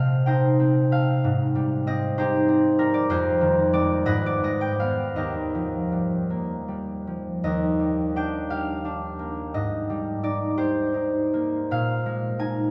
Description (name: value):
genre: classical, solo harp piece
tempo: 51-66 BPM (dotted quarters)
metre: 6/8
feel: rubato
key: Eb major from 3.1 s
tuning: A4 = 440 Hz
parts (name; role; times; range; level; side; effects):
- concert harp; solo; 0.0-12.7 s; Eb2 to Ab5; -24 LUFS; equal; none
room: wet cathedral reverb, RT60 5.1 s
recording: heard from further back in the room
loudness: -24 LUFS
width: mono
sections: 0.0-7.4 A section; 7.4-12.7 B section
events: none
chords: 0.0 Cm6; 1.2 Abmaj7; 3.1 Fm7; 4.1 Abm6; 5.2 Ebadd9; 7.4 Ebmaj9; 9.5 Abmaj9; 11.7 Bb11